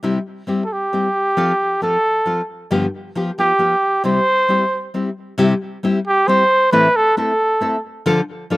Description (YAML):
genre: mexican folk, mariachi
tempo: 135 BPM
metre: 3/4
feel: straight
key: C major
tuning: A4 = 439 Hz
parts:
  - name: nylon-string guitar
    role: accompaniment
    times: 0.0-8.6 s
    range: G2 to A4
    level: -19 LUFS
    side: left 2 dB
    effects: none
  - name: mellow trumpet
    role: melody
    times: 0.6-7.8 s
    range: G4 to C5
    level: -15 LUFS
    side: right 1 dB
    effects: slapback echo
room: light reverb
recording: recorded outdoors, with no room sound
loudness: -15 LUFS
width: side -18 dB against mid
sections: 0.0-5.4 A section; 5.4-8.6 A section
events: none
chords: 0.0 C; 1.4 F; 2.7 G7; 4.0 C; 6.7 Am; 8.1 Dm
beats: | 0.03 0.48 0.93 | 1.38 1.82 2.27 | 2.71 3.16 3.60 | 4.04 4.49 4.94 | 5.39 5.84 6.29 | 6.73 7.17 7.61 | 8.05 8.50